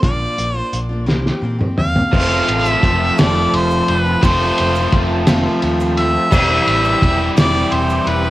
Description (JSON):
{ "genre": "folk rock and heartland rock", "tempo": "57 BPM (dotted quarters)", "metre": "6/8", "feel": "straight", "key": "unclear", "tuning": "A4 = 438 Hz", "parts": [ { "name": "warm harmonica", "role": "melody", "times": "0.0-8.3 s", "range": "B4 to F5", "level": "-19 LUFS", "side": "equal", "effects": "cassette tape, analog delay" }, { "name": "picked steel-string acoustic guitar", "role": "accompaniment", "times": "0.0-8.3 s", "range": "F2 to G4", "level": "-24 LUFS", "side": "left 1 dB", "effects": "cassette tape" }, { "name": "picked electric bass", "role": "bass", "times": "0.0-8.3 s", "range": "E1 to Bb2", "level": "-21 LUFS", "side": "equal", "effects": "none" }, { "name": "cloth-damped thuddy drum kit", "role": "drums", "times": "0.0-8.2 s", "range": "crash cymbal, hi-hat, kick drum, ride cymbal, snare drum, toms", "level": "-18 LUFS", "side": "equal", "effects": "cassette tape" }, { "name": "bright tonewheel organ", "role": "sustained chords", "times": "2.1-8.3 s", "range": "C4 to A5", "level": "-28 LUFS", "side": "equal", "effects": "none" }, { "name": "crunchy overdriven guitar", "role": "riff", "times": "2.1-8.3 s", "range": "E3 to F4", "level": "-19 LUFS", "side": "equal", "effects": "cassette tape" }, { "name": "egg shaker", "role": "percussion", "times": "2.1-8.3 s", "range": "none", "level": "-42 LUFS", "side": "right 6 dB", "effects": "none" } ], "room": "light reverb", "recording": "home recording on cassette", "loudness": "-13 LUFS", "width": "side -16 dB against mid", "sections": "0.0-2.1 A section; 2.1-8.3 B section", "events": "drum fill 1.1-2.1", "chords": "0.0 Bb; 1.1 C7; 2.1 F; 6.3 C/E", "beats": "| 0.03 1.08 | 2.13 3.18 | 4.23 5.28 | 6.32 7.37" }